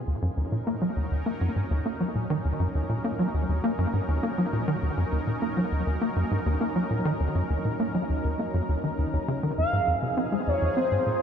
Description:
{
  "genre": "ambient, sequencer-driven space music",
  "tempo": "101 BPM",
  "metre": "4/4",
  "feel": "straight",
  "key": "unclear",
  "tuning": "A4 = 440 Hz",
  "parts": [
    { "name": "sweeping resonant pad", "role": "sustained chords", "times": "0.0-11.2 s", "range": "F3 to Bb4", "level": "-32 LUFS", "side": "equal", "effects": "chorus, shimmer reverb" },
    { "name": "tight sequencer bass", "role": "riff", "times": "0.1-11.1 s", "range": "Eb2 to C4", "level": "-26 LUFS", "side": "equal", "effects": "wide subtle chorus, tape echo" },
    { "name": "expressive portamento lead", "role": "melody", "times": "9.6-11.2 s", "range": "C5 to F5", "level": "-26 LUFS", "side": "equal", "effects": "analog chorus, shimmer reverb, tape echo" }
  ],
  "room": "wet huge ambient reverb, RT60 7.1 s",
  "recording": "in a vast, echoing space",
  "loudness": "-24 LUFS",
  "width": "side -8 dB against mid",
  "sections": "0.0-11.2 A section",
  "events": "fade-in on analog synth pad 0.0-11.2",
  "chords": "0.1 Ebm7; 9.6 Fm7"
}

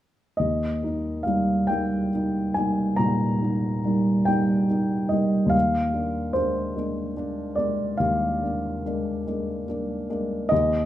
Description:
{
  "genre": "classical, romantic nocturne for solo piano",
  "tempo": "48 BPM (dotted quarters)",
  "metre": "12/8",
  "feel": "rubato",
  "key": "Eb major",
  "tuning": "A4 = 439 Hz",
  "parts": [
    { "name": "warm baby grand piano", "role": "solo", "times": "0.4-10.9 s", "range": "Eb2 to Bb5", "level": "-22 LUFS", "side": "equal", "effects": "none" }
  ],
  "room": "moderate recital hall reverb, RT60 1.6 s",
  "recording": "minimal, uncompressed stereo recording",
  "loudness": "-22 LUFS",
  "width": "side -13 dB against mid",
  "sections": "0.4-10.9 A section",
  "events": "none",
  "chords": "0.4 Eb; 5.5 Bb7/Eb"
}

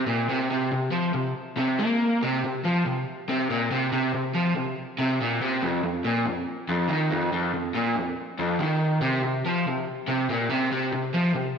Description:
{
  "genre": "rock",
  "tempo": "141 BPM",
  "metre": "4/4",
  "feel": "straight",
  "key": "unclear",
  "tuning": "A4 = 439 Hz",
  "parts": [
    { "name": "crunchy overdriven guitar", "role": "solo", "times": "0.0-11.5 s", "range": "F2 to Bb3", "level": "-23 LUFS", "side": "equal", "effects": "slapback echo" }
  ],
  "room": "wet lush hall reverb, RT60 2.0 s, digital ambience",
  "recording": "big arena sound",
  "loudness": "-23 LUFS",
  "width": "side -6 dB against mid",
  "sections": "0.0-2.2 A section; 2.2-9.0 B section; 9.0-11.6 B section",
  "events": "none",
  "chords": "none"
}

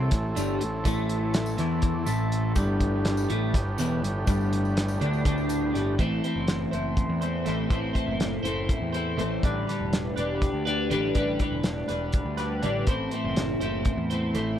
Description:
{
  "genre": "psychedelic rock",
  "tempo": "244 BPM (eighths)",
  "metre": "7/8",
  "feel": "straight",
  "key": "A dorian",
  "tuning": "A4 = 439 Hz",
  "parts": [
    { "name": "combo organ", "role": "sustained chords", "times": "0.0-6.0 s", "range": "E3 to A4", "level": "-34 LUFS", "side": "right 3 dB", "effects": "none" },
    { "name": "twelve-string electric guitar", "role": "riff", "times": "0.0-14.6 s", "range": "E2 to C5", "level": "-26 LUFS", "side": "equal", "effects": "phaser, double-tracked left and right" },
    { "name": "fuzz picked electric bass", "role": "bass", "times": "0.0-14.5 s", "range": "E1 to E2", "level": "-31 LUFS", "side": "equal", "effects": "overdrive" },
    { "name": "hand-pumped harmonium", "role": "drone", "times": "0.0-6.0 s", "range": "A2", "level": "-38 LUFS", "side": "left 2 dB", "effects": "none" },
    { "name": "cloth-damped thuddy drum kit", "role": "drums", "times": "0.1-14.5 s", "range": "hi-hat, kick drum, snare drum", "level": "-28 LUFS", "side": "equal", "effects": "none" },
    { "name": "tambourine", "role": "percussion", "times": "0.4-5.6 s", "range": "none", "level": "-44 LUFS", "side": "left 7 dB", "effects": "none" }
  ],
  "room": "light reverb, studio ambience",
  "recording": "none",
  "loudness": "-24 LUFS",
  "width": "side -10 dB against mid",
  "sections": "0.0-6.0 A section; 6.0-14.6 B section",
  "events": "none",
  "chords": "0.0 Am; 2.6 Gadd9; 6.0 Am; 9.4 Gadd9; 12.9 Am"
}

